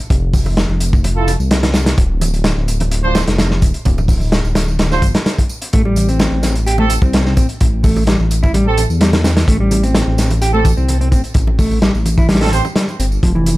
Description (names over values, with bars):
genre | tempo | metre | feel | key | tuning
breakbeat, breaks | 128 BPM | 4/4 | straight | A minor | A4 = 440 Hz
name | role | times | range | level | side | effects
crunchy breakbeat drum kit | drums | 0.0-13.6 s | hi-hat, kick drum, snare drum | -15 LUFS | equal | none
dark detuned saw bass | bass | 0.1-13.6 s | D1 to E2 | -16 LUFS | equal | none
tambourine | drums | 0.1-13.6 s | none | -31 LUFS | right 2 dB | none
congas | percussion | 0.1-13.6 s | none | -26 LUFS | right 2 dB | none
warm horn section | stabs | 1.2-12.6 s | C4 to C5 | -20 LUFS | right 4 dB | tape echo
mellow electric guitar | riff | 5.7-13.6 s | E3 to G4 | -19 LUFS | equal | tube saturation, tape echo
room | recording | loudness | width
light reverb | dark, warm production | -12 LUFS | side -18 dB against mid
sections
0.0-13.6 A section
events
none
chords
0.0 F5; 2.0 Dm; 5.7 Am7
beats
| 0.10 0.57 1.04 1.51 | 1.98 2.45 2.92 3.38 | 3.85 4.32 4.79 5.26 | 5.73 6.20 6.67 7.13 | 7.60 8.07 8.54 9.01 | 9.48 9.95 10.42 10.88 | 11.35 11.82 12.29 12.76 | 13.23